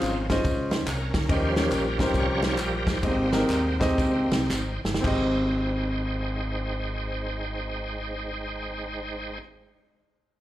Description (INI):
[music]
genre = uptempo gospel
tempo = 107-143 BPM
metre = 4/4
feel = swing 65% on 8ths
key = Ab major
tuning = A4 = 439 Hz
[part]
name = warm concert grand piano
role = accompaniment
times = 0.0-9.4 s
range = Ab1 to F5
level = -27 LUFS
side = left 1 dB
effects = slapback echo
[part]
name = bright tonewheel organ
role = sustained chords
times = 0.0-9.4 s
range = F3 to G5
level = -30 LUFS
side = right 2 dB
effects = slow rotary speaker, chorus vibrato
[part]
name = fingered electric bass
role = bass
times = 0.0-9.4 s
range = G1 to Eb2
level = -32 LUFS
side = equal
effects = none
[part]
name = natural country drum kit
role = drums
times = 0.0-5.2 s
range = crash cymbal, kick drum, ride cymbal, snare drum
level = -28 LUFS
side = equal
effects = none
[part]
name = handclaps and tambourine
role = percussion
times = 0.0-5.4 s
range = none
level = -39 LUFS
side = equal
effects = slapback echo
[sound]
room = light reverb, small room ambience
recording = live gig heard through the venue's PA, club reverb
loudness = -24 LUFS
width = side -13 dB against mid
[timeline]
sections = 0.0-5.0 A section; 5.0-9.5 B section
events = tonewheel organ solo 0.0-5.0; slowing down 1.3-5.0; drum fill 4.5-5.0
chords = 0.0 Dbmaj7; 1.3 Eb7; 3.0 Abmaj7